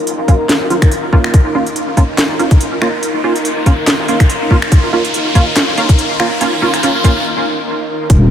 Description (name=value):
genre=deep dubstep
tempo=142 BPM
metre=4/4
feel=swing 55% on 16ths, half-time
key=unclear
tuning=A4 = 440 Hz
part: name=granular cloud pad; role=sustained chords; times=0.0-8.3 s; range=Eb4 to Bb4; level=-20 LUFS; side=left 1 dB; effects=built-in reverb, vintage 12-bit sampler grit
part: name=riser and impact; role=sound effects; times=0.0-8.3 s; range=none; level=-21 LUFS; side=left 1 dB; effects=none
part: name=garage drum kit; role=drums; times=0.1-8.2 s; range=finger snaps, handclaps, hi-hat, snare drum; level=-18 LUFS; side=equal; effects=none
part: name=filtered dub chord stab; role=stabs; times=0.3-7.1 s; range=Gb3 to F4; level=-17 LUFS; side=right 2 dB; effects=ensemble chorus, dub echo
part: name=electronic kick drum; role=drums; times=0.3-8.2 s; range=none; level=-9 LUFS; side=equal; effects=none
part: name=deep soft wobble bass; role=bass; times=8.1-8.3 s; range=Eb1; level=-9 LUFS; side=left 1 dB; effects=chorus
room=light reverb, digital ambience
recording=none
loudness=-10 LUFS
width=side -9 dB against mid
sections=0.0-8.1 A section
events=build-up 0.0-8.1; riser 0.0-7.3; break 7.3-8.1; impact 8.1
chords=0.0 Eb7(no3); 1.3 Bbm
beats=0.07 0.49 0.92 | 1.34 1.76 2.18 2.61 | 3.03 3.45 3.87 4.30 | 4.72 5.14 5.56 5.99 | 6.41 6.83 7.25 7.68 | 8.10